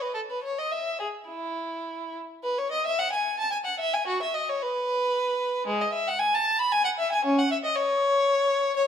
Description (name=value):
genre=classical, baroque-style suite movement for unaccompanied violin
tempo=102-120 BPM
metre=3/4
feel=rubato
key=E major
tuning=A4 = 441 Hz
part: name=rich violin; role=solo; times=0.0-8.9 s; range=G#3 to B5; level=-24 LUFS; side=left 1 dB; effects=none
room=wet stone room reverb, RT60 1.4 s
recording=none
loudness=-24 LUFS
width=side -8 dB against mid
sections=0.0-2.5 A section; 2.5-8.9 B section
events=none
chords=none